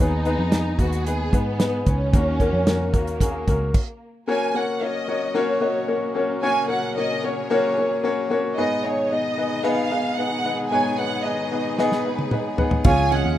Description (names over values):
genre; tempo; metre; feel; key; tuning
piano-driven pop; 112 BPM; 4/4; straight; unclear; A4 = 440 Hz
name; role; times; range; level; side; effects
warm studio violin section; melody; 0.0-13.4 s; Bb3 to Ab5; -26 LUFS; right 1 dB; none
clear concert grand piano; accompaniment; 0.0-13.4 s; Ab2 to Gb5; -23 LUFS; left 2 dB; none
warm symphonic string section; sustained chords; 0.0-13.4 s; Bb2 to Ab4; -35 LUFS; equal; none
vintage muted picked electric bass; bass; 0.0-3.7, 12.9-13.4 s; Db2 to Ab2; -24 LUFS; equal; none
damped 70s drum kit; drums; 0.3-3.9, 11.8-13.2 s; crash cymbal, hi-hat, kick drum, ride cymbal, snare drum, toms; -21 LUFS; equal; none
picked steel-string acoustic guitar; riff; 12.8-13.4 s; Db4 to F4; -24 LUFS; right 9 dB; none
room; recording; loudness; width
wet studio ambience, RT60 0.5 s; rough home demo mix; -20 LUFS; side -12 dB against mid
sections
0.0-4.3 A section; 4.3-13.4 B section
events
stop 3.7-4.3; drum fill 11.8-12.8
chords
0.0 Abm/Eb; 2.1 Gb/Eb; 4.3 Gb; 8.6 Abm; 12.8 Db